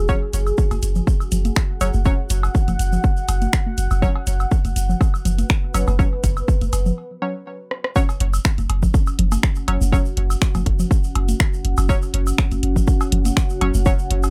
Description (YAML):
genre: minimal techno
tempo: 122 BPM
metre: 4/4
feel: swing 54% on 16ths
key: unclear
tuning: A4 = 440 Hz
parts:
  - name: punchy sub bass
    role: bass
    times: 0.0-14.3 s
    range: E1 to F#1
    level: -22 LUFS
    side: equal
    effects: sidechain pumping
  - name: deep dark ambient pad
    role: texture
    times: 0.0-14.3 s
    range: C#4 to F#5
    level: -32 LUFS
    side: equal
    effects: chorus, built-in reverb, sidechain pumping
  - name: wavetable chord stab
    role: stabs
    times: 0.1-13.9 s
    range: F#3 to C#5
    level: -28 LUFS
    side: equal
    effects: vintage 12-bit sampler grit, delay
  - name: electronic kick drum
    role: drums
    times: 0.1-14.0 s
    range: none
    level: -21 LUFS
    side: equal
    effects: none
  - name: tube shaker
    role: percussion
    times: 0.1-14.3 s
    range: none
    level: -38 LUFS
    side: equal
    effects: none
  - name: house drum kit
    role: drums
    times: 0.3-14.2 s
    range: finger snaps, hi-hat, rim click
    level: -26 LUFS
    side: equal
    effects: none
  - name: woodblock, cowbell and congas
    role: percussion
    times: 0.5-14.3 s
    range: none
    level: -29 LUFS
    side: equal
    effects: delay
room: little or no reverb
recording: none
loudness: -19 LUFS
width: mono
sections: 0.0-8.0 A section; 8.0-14.3 B section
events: break 7.0-8.0; drum fill 7.7; drop 8.0-14.3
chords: 0.0 F#5